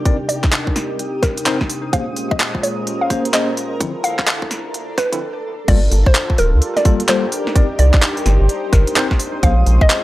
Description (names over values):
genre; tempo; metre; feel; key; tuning
UK garage, two-step garage; 128 BPM; 4/4; swing 63% on 16ths; G minor; A4 = 444 Hz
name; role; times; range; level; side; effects
warm analog pad; sustained chords; 0.0-10.0 s; Bb2 to C5; -26 LUFS; equal; chorus, sidechain pumping
granular cloud pad; texture; 0.0-10.0 s; G4 to Eb6; -28 LUFS; equal; built-in reverb, sidechain pumping
tine electric piano; stabs; 0.1-9.5 s; D3 to D5; -23 LUFS; left 2 dB; medium stereo tremolo, tape echo
electronic kick drum; drums; 0.1-9.9 s; none; -15 LUFS; equal; none
garage drum kit; drums; 0.1-10.0 s; crash cymbal, handclaps, hi-hat, snare drum; -20 LUFS; equal; none
hollow square pluck; melody; 0.3-10.0 s; Bb4 to F5; -21 LUFS; equal; chorus, tape echo
rubbery square bass; bass; 5.7-9.8 s; D1 to D2; -13 LUFS; equal; sidechain pumping
room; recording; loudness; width
digital ambience; dry, gritty hardware recording, high-pass filter; -14 LUFS; side -16 dB against mid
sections
0.0-5.7 A section; 5.7-10.0 B section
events
build-up 0.0-5.7; filter sweep on tine electric piano 0.0-5.7; filter sweep on synth pluck 0.0-5.7; filter sweep on analog synth pad 0.0-5.7; filter sweep 0.0-5.7; stop 5.2-5.7; drop 5.7-10.0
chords
0.0 Cm9; 1.9 Bbm9; 3.8 Dm9; 5.7 Gm9; 7.3 Cm9; 9.4 Bbm9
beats
| 0.06 0.53 0.99 1.46 | 1.93 2.40 2.87 3.34 | 3.81 4.28 4.74 5.21 | 5.68 6.15 6.62 7.09 | 7.56 8.03 8.49 8.96 | 9.43 9.90